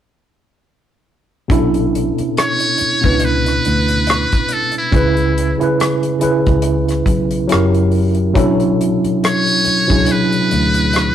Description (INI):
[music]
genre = R&B, neo-soul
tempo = 70 BPM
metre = 4/4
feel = swing 56% on 16ths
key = B dorian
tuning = A4 = 441 Hz
[part]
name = tine electric piano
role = accompaniment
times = 1.5-11.1 s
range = B2 to B4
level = -16 LUFS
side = right 1 dB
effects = overdrive, fast stereo tremolo
[part]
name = vintage muted fingered electric bass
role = bass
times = 1.5-11.1 s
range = F#1 to D2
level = -19 LUFS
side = left 1 dB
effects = none
[part]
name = damped 70s drum kit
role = drums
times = 1.5-11.1 s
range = hi-hat, kick drum, rim click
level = -18 LUFS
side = left 1 dB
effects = none
[part]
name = trumpet with metal mute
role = melody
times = 2.4-11.1 s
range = E4 to C#5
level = -17 LUFS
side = equal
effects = none
[sound]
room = moderate stone room reverb, RT60 1.0 s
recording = rough rehearsal-room recording, warm saturation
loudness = -13 LUFS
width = side -10 dB against mid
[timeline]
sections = 1.5-11.1 A section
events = none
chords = 1.5 Bm11; 4.9 C#m7; 7.5 F#7b9; 8.4 Bm11